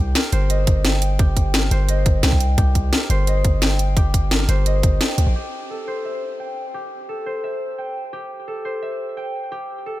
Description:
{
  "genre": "liquid drum and bass",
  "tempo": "173 BPM",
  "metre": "4/4",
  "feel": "straight",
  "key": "A minor",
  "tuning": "A4 = 440 Hz",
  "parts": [
    { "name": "concert harp", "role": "arpeggios", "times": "0.0-10.0 s", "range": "G4 to G5", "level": "-26 LUFS", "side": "left 1 dB", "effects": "low-pass filter, ping-pong delay" },
    { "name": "long sustained 808-style bass", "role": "bass", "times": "0.0-5.3 s", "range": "G1 to D2", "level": "-18 LUFS", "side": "equal", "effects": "none" },
    { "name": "drum and bass drum kit", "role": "drums", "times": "0.2-5.3 s", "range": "hi-hat, snare drum", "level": "-23 LUFS", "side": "left 1 dB", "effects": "overdrive" },
    { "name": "electronic kick drum", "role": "drums", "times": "0.7-4.9 s", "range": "none", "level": "-18 LUFS", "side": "equal", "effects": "overdrive" }
  ],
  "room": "little or no reverb",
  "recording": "none",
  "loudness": "-18 LUFS",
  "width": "side -16 dB against mid",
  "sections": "0.0-5.4 A section; 5.4-10.0 B section",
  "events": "kick drops out 5.0-5.4; band accent 5.0",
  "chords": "0.0 Cm7; 5.4 Am7"
}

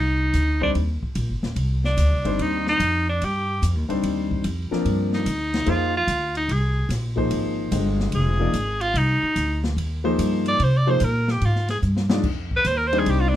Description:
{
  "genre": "modal jazz",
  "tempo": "146 BPM",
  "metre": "4/4",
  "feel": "swing 67% on 8ths",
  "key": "F dorian",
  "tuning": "A4 = 440 Hz",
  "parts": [
    { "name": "clear tenor saxophone", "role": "melody", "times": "0.0-13.4 s", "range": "D4 to D5", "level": "-23 LUFS", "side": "right 1 dB", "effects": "none" },
    { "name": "upright bass", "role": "bass", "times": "0.0-13.4 s", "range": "Eb1 to C3", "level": "-23 LUFS", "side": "equal", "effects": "none" },
    { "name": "open jazz drum kit", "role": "drums", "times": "0.3-13.4 s", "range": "crash cymbal, hi-hat, kick drum, ride cymbal, snare drum", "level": "-32 LUFS", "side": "left 1 dB", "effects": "none" },
    { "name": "warm grand piano", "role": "accompaniment", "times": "0.6-13.4 s", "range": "D3 to Eb5", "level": "-24 LUFS", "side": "left 3 dB", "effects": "none" }
  ],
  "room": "moderate small room ambience, RT60 0.5 s",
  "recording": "none",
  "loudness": "-20 LUFS",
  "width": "side -12 dB against mid",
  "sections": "0.0-13.4 A section",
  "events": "tenor saxophone solo 0.0-13.4; drum fill 11.8-12.2",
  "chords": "0.0 Cmadd9; 5.7 Fm9; 12.2 Cmadd9"
}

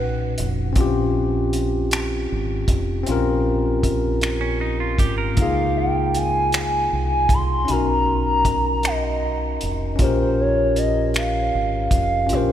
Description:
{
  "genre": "slow six-eight R&B",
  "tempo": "52 BPM (dotted quarters)",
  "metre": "6/8",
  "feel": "straight",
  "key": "Bb dorian",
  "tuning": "A4 = 440 Hz",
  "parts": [
    { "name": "gliding portamento lead", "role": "melody", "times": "0.0-0.5, 5.4-12.5 s", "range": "Bb4 to C6", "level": "-22 LUFS", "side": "right 1 dB", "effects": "chorus" },
    { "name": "barky tine electric piano", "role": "accompaniment", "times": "0.0-12.5 s", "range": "A#2 to C5", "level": "-23 LUFS", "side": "left 2 dB", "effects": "none" },
    { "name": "deep dub fingered electric bass", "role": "bass", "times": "0.0-12.5 s", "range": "F1 to Db2", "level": "-24 LUFS", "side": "equal", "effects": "none" },
    { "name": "cloth-damped thuddy drum kit", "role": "drums", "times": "0.4-12.5 s", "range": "finger snaps, hi-hat, kick drum", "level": "-25 LUFS", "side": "equal", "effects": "none" },
    { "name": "semi-hollow electric guitar", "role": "second line", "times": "4.4-5.5 s", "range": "Db4 to Bb4", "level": "-31 LUFS", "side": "right 5 dB", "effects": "none" }
  ],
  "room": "wet cathedral reverb, RT60 5.2 s",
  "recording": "recorded in a church or concert hall",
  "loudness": "-18 LUFS",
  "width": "side -10 dB against mid",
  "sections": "0.0-12.5 A section",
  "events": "none",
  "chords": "0.0 Bmaj9; 0.8 Bbm69; 5.4 Db6; 7.7 Bmaj9; 10.0 Bbm6"
}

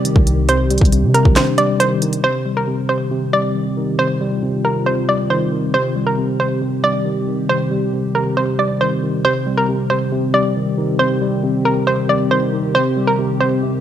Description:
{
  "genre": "hip hop, trap",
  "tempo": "137 BPM",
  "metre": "4/4",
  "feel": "half-time",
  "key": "C minor",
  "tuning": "A4 = 438 Hz",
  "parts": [
    { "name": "hollow square pluck", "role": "melody", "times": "0.0-13.8 s", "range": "Bb4 to D5", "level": "-19 LUFS", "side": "right 1 dB", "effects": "chorus, low-pass filter, slapback echo" },
    { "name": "tine electric piano", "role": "accompaniment", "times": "0.0-13.8 s", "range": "C3 to G3", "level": "-19 LUFS", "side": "left 1 dB", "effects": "medium stereo tremolo, low-pass filter" },
    { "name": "dark analog pad", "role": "sustained chords", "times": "0.0-13.8 s", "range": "Eb3 to G4", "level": "-24 LUFS", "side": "right 1 dB", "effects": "chorus, phaser" },
    { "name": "trap drum kit", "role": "drums", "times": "0.1-2.2 s", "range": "finger snaps, hi-hat, kick drum, snare drum", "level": "-16 LUFS", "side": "equal", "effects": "none" },
    { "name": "warm 808-style bass", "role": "bass", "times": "0.2-1.4 s", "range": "C2 to C3", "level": "-16 LUFS", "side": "equal", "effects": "none" }
  ],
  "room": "light reverb",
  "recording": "none",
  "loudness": "-15 LUFS",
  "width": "side -10 dB against mid",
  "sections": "0.0-2.2 A section; 2.2-9.2 B section; 9.2-13.8 A section",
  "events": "break 1.4-2.2",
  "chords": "0.0 Cm"
}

